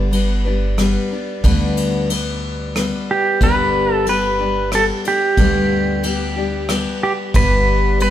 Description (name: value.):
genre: honky-tonk and classic country.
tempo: 91 BPM.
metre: 3/4.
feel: straight.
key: G major.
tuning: A4 = 441 Hz.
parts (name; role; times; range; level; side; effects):
picked steel-string acoustic guitar; accompaniment; 0.0-8.1 s; G2 to B4; -20 LUFS; left 3 dB; none.
upright bass; bass; 0.0-8.1 s; G1 to D2; -22 LUFS; equal; none.
soft brush drum kit; drums; 0.1-8.1 s; kick drum, ride cymbal, rim click; -22 LUFS; equal; none.
pedal steel guitar; melody; 3.1-8.1 s; G4 to B4; -18 LUFS; right 2 dB; none.
room: moderate stone room reverb, RT60 1.3 s.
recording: band playing live in one room.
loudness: -15 LUFS.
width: side -11 dB against mid.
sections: 0.0-3.4 A section; 3.4-8.1 B section.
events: none.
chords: 0.0 G.